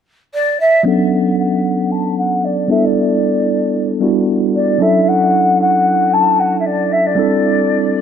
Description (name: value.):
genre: amapiano.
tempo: 114 BPM.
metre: 4/4.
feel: swing 55% on 16ths.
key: B minor.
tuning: A4 = 440 Hz.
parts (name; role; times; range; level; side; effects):
breathy mellow jazz flute; melody; 0.3-8.0 s; D5 to A5; -15 LUFS; left 1 dB; low-pass filter, tape echo.
tine electric piano; accompaniment; 0.8-8.0 s; F#3 to A4; -15 LUFS; equal; medium stereo tremolo, low-pass filter.
room: light reverb, small room ambience.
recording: none.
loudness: -12 LUFS.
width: side -8 dB against mid.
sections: 0.9-8.0 A section.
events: filter sweep 0.9-8.0.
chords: 0.0 N.C.; 0.9 Bm9; 2.7 A9sus4; 4.8 Dmaj7; 7.2 C69.